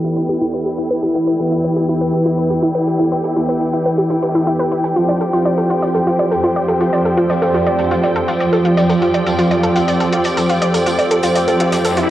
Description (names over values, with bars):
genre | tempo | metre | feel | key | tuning
melodic techno | 122 BPM | 4/4 | straight | unclear | A4 = 438 Hz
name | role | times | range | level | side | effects
rich studio string section | sustained chords | 0.0-12.1 s | F3 to G5 | -19 LUFS | left 1 dB | cassette tape
wide unison pluck | arpeggios | 0.0-12.1 s | E4 to G5 | -19 LUFS | equal | cassette tape, analog delay
analog synth brass | stabs | 0.0-12.1 s | E3 to F4 | -20 LUFS | right 1 dB | chorus, cassette tape, analog delay
dusty soul sampler-style drum kit | drums | 0.0-12.1 s | hi-hat, snare drum, tambourine | -32 LUFS | equal | none
electronic hi-hat | drums | 0.0-12.1 s | none | -30 LUFS | equal | overdrive, cassette tape
tambourine | percussion | 0.0-12.1 s | none | -33 LUFS | left 2 dB | none
granular cloud pad | texture | 0.0-12.1 s | F3 to G5 | -20 LUFS | right 1 dB | built-in reverb, cassette tape
swell | sound effects | 11.9-12.1 s | none | -19 LUFS | left 4 dB | none
room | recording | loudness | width
wet studio ambience, RT60 0.5 s | home recording on cassette, low-pass filter | -13 LUFS | side -13 dB against mid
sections
0.0-12.1 A section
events
filter sweep on synth arpeggio sound 0.0-12.1; filter sweep on analog polysynth 0.0-12.1; filter sweep 0.0-12.1; swell 11.9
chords
0.0 Em; 5.0 Fsus2